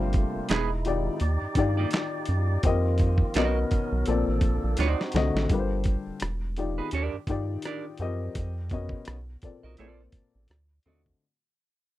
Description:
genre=R&B, neo-soul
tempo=84 BPM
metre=4/4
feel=swing 58% on 16ths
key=unclear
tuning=A4 = 440 Hz
part: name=dark upright piano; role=accompaniment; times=0.0-11.2 s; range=Bb2 to Eb5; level=-30 LUFS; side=left 5 dB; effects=none
part: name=tonewheel organ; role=sustained chords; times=0.0-5.5 s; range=C3 to D5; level=-34 LUFS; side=right 2 dB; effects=overdrive, fast rotary speaker
part: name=rubbery square bass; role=bass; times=0.0-11.2 s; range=E1 to G2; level=-28 LUFS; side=equal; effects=none
part: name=boom bap sampler-style drum kit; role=drums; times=0.1-11.2 s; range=handclaps, hi-hat, kick drum, rim click, snare drum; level=-28 LUFS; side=right 1 dB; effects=none
part: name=clean electric guitar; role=second line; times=0.5-11.0 s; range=Bb3 to D#5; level=-30 LUFS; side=right 8 dB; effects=none
room=little or no reverb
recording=dry, close 1970s-style studio recording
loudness=-24 LUFS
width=side -15 dB against mid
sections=0.0-5.5 A section; 5.5-11.2 B section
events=drum fill 4.8-5.5; fade-out 5.5-11.2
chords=0.5 Emaj7; 1.2 Ebmaj7; 2.6 F7sus4; 3.4 Bmaj7; 4.1 Bbmaj7; 4.8 D7b9; 5.5 Gm11; 6.2 Emaj7(no3); 6.9 Ebmaj7; 8.3 F7sus4; 9.1 Bmaj7; 9.8 Bbmaj7; 10.5 D7b9

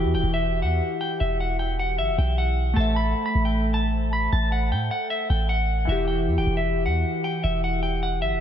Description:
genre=hip hop, trap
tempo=154 BPM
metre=4/4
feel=half-time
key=E minor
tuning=A4 = 439 Hz
part: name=clean electric guitar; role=melody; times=0.0-8.4 s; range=E5 to B5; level=-26 LUFS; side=equal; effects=low-pass filter, analog delay
part: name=glassy digital keys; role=accompaniment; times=0.0-8.4 s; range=E3 to E5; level=-28 LUFS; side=left 1 dB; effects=chorus, low-pass filter
part: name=warm 808-style bass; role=bass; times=0.0-8.4 s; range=E1 to A2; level=-24 LUFS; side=equal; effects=none
room=light reverb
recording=none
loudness=-21 LUFS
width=side -9 dB against mid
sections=0.0-8.4 A section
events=none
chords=0.0 Emadd9; 2.8 Am; 5.9 Emadd9

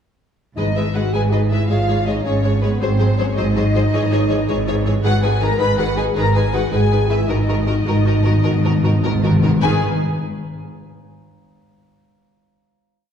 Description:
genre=cinematic, heroic adventure film score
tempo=106 BPM (dotted quarters)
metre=12/8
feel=uneven beats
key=G# minor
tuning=A4 = 440 Hz
part: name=warm symphonic violin section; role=melody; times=0.6-9.8 s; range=A#4 to C#5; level=-27 LUFS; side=left 4 dB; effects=none
part: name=warm symphonic violin section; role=second line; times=0.6-9.8 s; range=B4 to B5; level=-26 LUFS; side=left 2 dB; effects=none
part: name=warm symphonic viola section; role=accompaniment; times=0.6-9.9 s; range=D#3 to G#4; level=-25 LUFS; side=right 1 dB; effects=none
part: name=mellow French horn section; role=sustained chords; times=0.6-9.8 s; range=B3 to B4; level=-23 LUFS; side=left 2 dB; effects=none
part: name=rich symphonic double bass section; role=bass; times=0.6-9.8 s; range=G#1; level=-22 LUFS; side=right 2 dB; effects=none
part: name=warm symphonic cello section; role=bass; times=0.6-9.9 s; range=G#2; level=-21 LUFS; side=right 1 dB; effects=none
part: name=timpani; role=percussion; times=0.6-1.1, 7.3-9.8 s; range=G#2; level=-20 LUFS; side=left 1 dB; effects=none
room=wet scoring stage reverb, RT60 1.9 s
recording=heard from further back in the room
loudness=-15 LUFS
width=side -8 dB against mid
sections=0.6-9.6 theme; 9.6-12.0 final chord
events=slowing down 5.8-9.6; timpani fill 7.3-9.6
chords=0.6 G#m; 1.7 C#/G#; 2.8 G#7; 3.9 C#m/G#; 5.0 G#m; 7.3 D#m/G#; 9.6 N.C.

